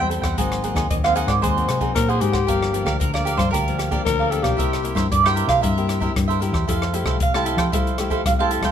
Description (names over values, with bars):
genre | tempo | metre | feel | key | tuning
samba and choro | 114 BPM | 4/4 | straight | F major | A4 = 435 Hz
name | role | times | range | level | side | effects
mandolin | melody | 0.0-8.7 s | Bb4 to A5 | -23 LUFS | right 5 dB | none
cavaquinho | accompaniment | 0.0-8.7 s | Eb4 to G5 | -25 LUFS | right 4 dB | none
nylon-string guitar | accompaniment | 0.0-8.7 s | G2 to G4 | -28 LUFS | left 4 dB | none
hollow-body short-scale fingered electric bass | bass | 0.0-8.7 s | G1 to F3 | -24 LUFS | left 1 dB | none
open jazz drum kit | drums | 0.1-8.7 s | hi-hat, kick drum, rim click | -25 LUFS | left 2 dB | none
growling tenor saxophone | second line | 1.9-5.0 s | G4 to Bb4 | -23 LUFS | left 8 dB | none
room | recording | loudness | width
light reverb | minimal, uncompressed stereo recording | -18 LUFS | side -9 dB against mid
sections
0.0-8.7 A section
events
none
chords
0.4 Ab9; 2.5 Gm7; 4.6 C7; 6.7 Fmaj9